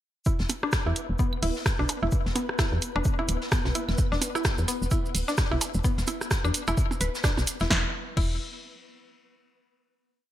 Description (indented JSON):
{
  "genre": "minimal techno",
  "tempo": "129 BPM",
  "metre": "4/4",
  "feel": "swing 58% on 16ths",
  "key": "unclear",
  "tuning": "A4 = 440 Hz",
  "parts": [
    { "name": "mallet-like synth pluck", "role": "riff", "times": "0.3-8.4 s", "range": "B3 to B4", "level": "-32 LUFS", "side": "left 1 dB", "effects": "chorus, sidechain pumping, ping-pong delay" },
    { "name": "electronic kick drum", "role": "drums", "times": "0.3-8.3 s", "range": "none", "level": "-27 LUFS", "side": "equal", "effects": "none" },
    { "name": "vintage brush drum kit", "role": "drums", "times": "0.3-7.7 s", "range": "hi-hat, shaker, snare drum", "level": "-37 LUFS", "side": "left 1 dB", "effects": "high-pass filter on hats, high-pass filter on snare, high-pass filter on perc, high-pass filter on room, gated reverb" },
    { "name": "flickering grainy texture", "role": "texture", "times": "0.5-7.7 s", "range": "B3 to B4", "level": "-39 LUFS", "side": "left 2 dB", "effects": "built-in reverb, sidechain pumping" },
    { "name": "woody FM bass", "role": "bass", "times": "0.4-8.4 s", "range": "D1 to E2", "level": "-28 LUFS", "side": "equal", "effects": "sidechain pumping" },
    { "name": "punchy analog drum machine", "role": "drums", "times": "0.5-8.3 s", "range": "crash cymbal, hi-hat, rim click, snare drum", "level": "-30 LUFS", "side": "right 1 dB", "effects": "gated reverb" },
    { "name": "percussion blips and claves", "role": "percussion", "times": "0.5-7.5 s", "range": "none", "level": "-37 LUFS", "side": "right 4 dB", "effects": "ping-pong delay" },
    { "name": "maracas", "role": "percussion", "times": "4.0-7.7 s", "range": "none", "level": "-36 LUFS", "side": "right 3 dB", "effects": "none" }
  ],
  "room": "light reverb, small room ambience",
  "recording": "bright 1980s-style digital production",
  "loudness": "-24 LUFS",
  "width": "side -13 dB against mid",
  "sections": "0.3-7.7 groove; 7.7-9.6 final note",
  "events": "filter sweep on synth arpeggio sound 0.3-7.7",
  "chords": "0.3 E5; 7.7 N.C.",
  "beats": "| 0.26 0.73 1.19 1.66 | 2.12 2.59 3.05 3.52 | 3.98 4.45 4.91 5.38 | 5.84 6.31 6.77 7.24 | 7.71 8.17"
}